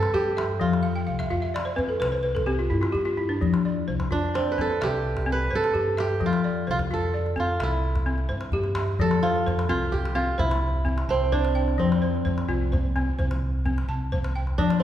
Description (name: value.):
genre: west african traditional, West African string and xylophone music.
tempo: 86 BPM (dotted quarters).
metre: 12/8.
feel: straight.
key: F lydian.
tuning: A4 = 440 Hz.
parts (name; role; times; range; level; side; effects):
kora; melody; 0.0-14.8 s; C4 to B4; -26 LUFS; right 3 dB; none.
balafon; arpeggios; 0.0-14.8 s; F3 to A5; -27 LUFS; left 4 dB; none.
upright bass; bass; 0.0-14.8 s; C2 to G2; -28 LUFS; equal; none.
calabash; percussion; 0.0-14.8 s; none; -32 LUFS; equal; none.
room: wet recital hall reverb, RT60 1.7 s.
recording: heard from further back in the room.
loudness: -22 LUFS.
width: side -11 dB against mid.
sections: 0.0-9.0 A section; 9.0-14.8 B section.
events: balafon fill 0.8-3.4.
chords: 0.0 C; 0.6 F5; 4.8 C; 6.2 F; 7.6 C; 9.0 F5; 10.4 C; 11.8 F5; 13.2 C5.